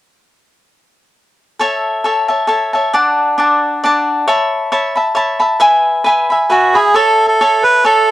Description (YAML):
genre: mexican folk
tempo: 135 BPM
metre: 3/4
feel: swing 55% on 8ths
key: A major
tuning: A4 = 440 Hz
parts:
  - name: cavaquinho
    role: accompaniment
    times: 1.6-8.1 s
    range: D4 to B5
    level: -12 LUFS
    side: left 1 dB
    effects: none
  - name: melodica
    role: melody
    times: 6.5-8.1 s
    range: F#4 to B4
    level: -10 LUFS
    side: right 2 dB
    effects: cassette tape
room: light reverb, small room ambience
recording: home recording on cassette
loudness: -11 LUFS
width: side -14 dB against mid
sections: 1.6-6.9 A section; 6.9-8.1 B section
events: none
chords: 1.6 A; 2.9 D; 4.3 Aadd9; 5.6 E; 6.9 A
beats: | 1.61 2.06 2.50 | 2.95 3.39 3.83 | 4.28 4.72 5.16 | 5.61 6.05 6.50 | 6.94 7.39 7.83